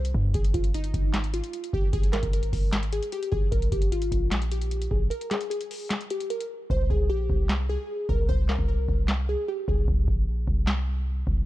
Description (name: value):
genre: hip hop, trap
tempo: 151 BPM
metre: 4/4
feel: half-time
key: C minor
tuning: A4 = 438 Hz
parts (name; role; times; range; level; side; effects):
- glassy digital keys; melody; 0.0-9.8 s; Eb4 to C5; -31 LUFS; left 1 dB; chorus, ping-pong delay
- warm 808-style bass; bass; 0.0-11.5 s; G1 to G2; -26 LUFS; equal; none
- booming analog drum machine; drums; 0.0-11.5 s; handclaps, hi-hat, kick drum, snare drum; -27 LUFS; equal; vintage 12-bit sampler grit
room: little or no reverb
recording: dark, warm production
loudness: -24 LUFS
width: side -16 dB against mid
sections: 0.0-11.5 A section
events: break 5.1-6.7; hi-hats muted 6.7-11.5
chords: 0.3 N.C.; 3.5 Bb5; 6.7 C5